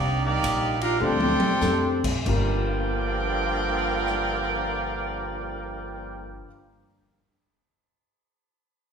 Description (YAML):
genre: jazz, big band swing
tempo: 89-113 BPM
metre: 4/4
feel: swing 67% on 8ths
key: G minor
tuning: A4 = 440 Hz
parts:
  - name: bright trumpet section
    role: melody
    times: 0.0-6.4 s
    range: Bb3 to G5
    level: -27 LUFS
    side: right 1 dB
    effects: none
  - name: mellow trombone section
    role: second line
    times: 0.0-6.4 s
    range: G2 to G4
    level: -30 LUFS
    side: right 2 dB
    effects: none
  - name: upright bass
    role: bass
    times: 0.0-6.4 s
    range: G1 to F2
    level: -30 LUFS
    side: equal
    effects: none
  - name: swinging big-band drum kit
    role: drums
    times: 0.4-4.2 s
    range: crash cymbal, hi-hat, kick drum, ride cymbal, rim click, snare drum, toms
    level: -30 LUFS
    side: left 1 dB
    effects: none
  - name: warm grand piano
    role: accompaniment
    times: 1.0-6.5 s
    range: G2 to Bb4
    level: -30 LUFS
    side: left 3 dB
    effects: none
room: wet recital hall reverb, RT60 1.5 s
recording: recorded in a church or concert hall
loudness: -22 LUFS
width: side -6 dB against mid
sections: 0.0-2.3 A section; 2.3-7.7 B section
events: slowing down 0.0-2.3; drum fill 1.0-1.6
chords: 0.0 Cm9; 1.0 D7sus4; 2.3 Gm7